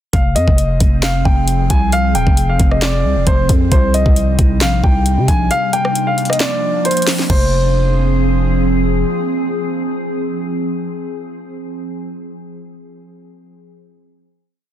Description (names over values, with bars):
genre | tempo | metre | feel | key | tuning
hip hop, trap | 134 BPM | 4/4 | half-time | F dorian | A4 = 440 Hz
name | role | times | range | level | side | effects
dark grand piano | melody | 0.1-8.6 s | C5 to Ab5 | -19 LUFS | left 1 dB | digital delay
glassy FM pad | sustained chords | 0.6-11.5 s | C3 to Ab4 | -21 LUFS | right 1 dB | ensemble chorus, built-in reverb
growling 808-style bass | bass | 0.1-9.0 s | Eb1 to C3 | -16 LUFS | equal | none
trap drum kit | drums | 0.1-7.4 s | crash cymbal, handclaps, hi-hat, kick drum, rim click, snare drum | -15 LUFS | equal | none
room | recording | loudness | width
digital ambience | dense, heavily limited modern master | -12 LUFS | side -11 dB against mid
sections
0.1-7.3 hook; 7.3-10.9 final chord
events
break 5.5-7.3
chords
0.1 Fm; 3.7 Cm; 5.5 Bb; 7.3 Fm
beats
| 0.13 0.58 1.03 1.48 | 1.93 2.37 2.82 3.27 | 3.72 4.16 4.61 5.06 | 5.51 5.96 6.40 6.85 | 7.30 7.75 8.19 8.64 | 9.09 9.54 9.98 10.43